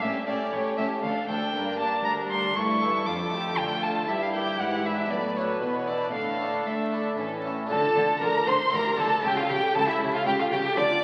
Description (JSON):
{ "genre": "classical, baroque-style concerto movement with solo episodes", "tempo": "117 BPM", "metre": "3/4", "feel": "straight", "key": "unclear", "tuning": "A4 = 440 Hz", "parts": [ { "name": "rich chamber violin section", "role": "melody", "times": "0.0-11.0 s", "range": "G4 to D6", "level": "-32 LUFS", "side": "equal", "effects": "none" }, { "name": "rich violin", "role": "melody", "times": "0.0-11.0 s", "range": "E4 to D6", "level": "-31 LUFS", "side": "equal", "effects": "none" }, { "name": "rich symphonic violin section", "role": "second line", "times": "0.0-11.0 s", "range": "B3 to D5", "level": "-34 LUFS", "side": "equal", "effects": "none" }, { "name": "dark symphonic viola section", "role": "accompaniment", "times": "0.0-11.0 s", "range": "D3 to A4", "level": "-38 LUFS", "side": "equal", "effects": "none" }, { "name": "harpsichord", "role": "accompaniment", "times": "0.0-11.0 s", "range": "D2 to B4", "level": "-35 LUFS", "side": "equal", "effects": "none" }, { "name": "warm chamber cello section", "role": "bass", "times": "0.0-10.8 s", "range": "D2 to A3", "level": "-37 LUFS", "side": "equal", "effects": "none" }, { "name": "rich studio double bass section", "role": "bass", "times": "7.7-10.8 s", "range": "C#2 to D2", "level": "-40 LUFS", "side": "equal", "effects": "none" } ], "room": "wet scoring stage reverb, RT60 1.6 s", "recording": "very old 78 rpm record, vinyl crackle", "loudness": "-26 LUFS", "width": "mono", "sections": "0.0-7.7 A section; 7.7-11.0 B section", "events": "none", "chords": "0.0 A7; 1.0 Dm; 1.5 Gm; 2.6 A7/G; 3.1 Dm/F; 4.1 Edim/G; 4.6 E7/G#; 6.1 Asus4; 7.2 A; 7.7 Dm; 8.7 Em7b5/D; 9.2 A7/C#", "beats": "| 0.01 0.52 1.03 | 1.54 2.05 2.55 | 3.06 3.57 4.08 | 4.59 5.10 5.61 | 6.13 6.66 7.18 | 7.70 8.21 8.72 | 9.24 9.75 10.26 | 10.77" }